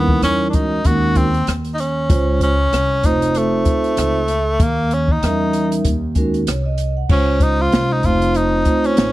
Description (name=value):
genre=hip hop, jazz-hop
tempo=96 BPM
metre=4/4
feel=swing 57% on 16ths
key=Db major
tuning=A4 = 440 Hz
part: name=bright tenor saxophone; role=melody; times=0.0-9.1 s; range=A3 to Gb4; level=-19 LUFS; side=equal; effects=none
part: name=vibraphone with soft mallets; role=accompaniment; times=0.0-9.1 s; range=G3 to Gb5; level=-20 LUFS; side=right 2 dB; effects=none
part: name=upright bass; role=bass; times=0.0-9.1 s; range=F1 to Fb2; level=-20 LUFS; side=equal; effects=none
part: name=open jazz drum kit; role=drums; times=0.1-9.1 s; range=crash cymbal, hi-hat, kick drum, rim click, snare drum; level=-19 LUFS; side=equal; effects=none
room=studio ambience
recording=dry, close 1970s-style studio recording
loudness=-14 LUFS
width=side -16 dB against mid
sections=0.0-7.1 A section; 7.1-9.1 B section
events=tenor saxophone solo 7.1-9.1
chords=0.0 Eb7b9; 0.8 Ab9sus4/Eb; 2.1 Dbmaj7; 3.0 F7; 4.6 Eb7b9; 5.8 Ab9sus4/Eb; 7.1 Dbmaj7; 8.0 F7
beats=0.22 0.85 1.47 | 2.10 2.72 3.35 3.97 | 4.60 5.22 5.85 6.47 | 7.10 7.72 8.35 8.97